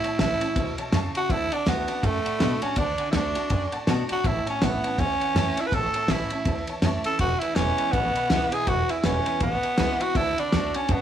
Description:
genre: rockabilly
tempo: 162 BPM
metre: 4/4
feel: swing 60% on 8ths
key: A major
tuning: A4 = 440 Hz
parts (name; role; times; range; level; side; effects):
- growling tenor saxophone; melody; 0.0-11.0 s; A3 to B4; -26 LUFS; right 1 dB; analog delay
- honky-tonk upright piano; accompaniment; 0.0-11.0 s; B4 to B5; -35 LUFS; right 2 dB; none
- picked steel-string acoustic guitar; accompaniment; 0.0-11.0 s; E2 to F#4; -32 LUFS; left 4 dB; none
- upright bass; bass; 0.0-11.0 s; E1 to B2; -28 LUFS; right 1 dB; none
- cloth-damped thuddy drum kit; drums; 0.0-11.0 s; kick drum, ride cymbal, snare drum; -28 LUFS; equal; none
room: light reverb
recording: none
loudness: -22 LUFS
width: side -10 dB against mid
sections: 0.0-11.0 A section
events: none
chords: 0.0 A; 1.3 D; 4.2 A; 7.2 E; 10.2 D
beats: 0.19 0.56 0.93 | 1.29 1.66 2.03 2.40 | 2.77 3.14 3.50 3.87 | 4.24 4.61 4.98 5.35 | 5.72 6.09 6.46 6.83 | 7.20 7.57 7.94 8.31 | 8.68 9.05 9.42 9.79 | 10.16 10.53 10.90

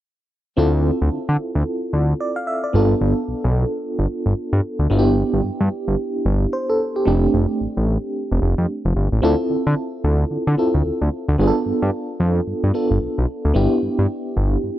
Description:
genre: R&B, new jack swing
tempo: 111 BPM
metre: 4/4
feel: swing 61% on 16ths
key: D dorian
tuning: A4 = 441 Hz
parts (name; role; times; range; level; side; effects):
- FM electric piano with tremolo; accompaniment; 0.6-14.8 s; A3 to F5; -21 LUFS; right 1 dB; phaser
- fat analog bass; bass; 0.6-14.7 s; F1 to D3; -18 LUFS; equal; none
room: little or no reverb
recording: none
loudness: -17 LUFS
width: side -13 dB against mid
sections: 0.6-9.2 A section; 9.2-14.8 B section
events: none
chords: 0.6 Dm7; 2.7 G7; 4.9 G69; 7.1 F6; 9.2 Dm7; 11.4 G7; 13.6 Cmaj7/G (rootless)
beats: | 0.58 1.12 1.66 2.20 | 2.74 3.28 3.83 4.37 | 4.91 5.45 5.99 6.53 | 7.07 7.61 8.15 8.69 | 9.23 9.77 10.31 10.85 | 11.39 11.93 12.47 13.01 | 13.55 14.10 14.64

